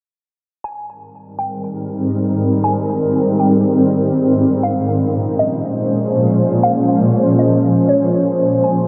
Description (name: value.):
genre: hip hop.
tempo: 120 BPM.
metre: 4/4.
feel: half-time.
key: Ab major.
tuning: A4 = 442 Hz.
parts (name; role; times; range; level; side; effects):
hollow square pluck; melody; 0.6-8.9 s; Db5 to Ab5; -24 LUFS; equal; chorus, delay.
shimmering ambient pad; sustained chords; 1.5-8.9 s; Ab2 to C5; -16 LUFS; equal; chorus, built-in reverb.
room: wet plate reverb, RT60 3.5 s.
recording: dreamy mix soaked in reverb, low-pass filter.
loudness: -16 LUFS.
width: mono.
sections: 0.6-8.9 A section.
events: none.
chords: 0.6 Abmaj9; 4.6 Bbm7.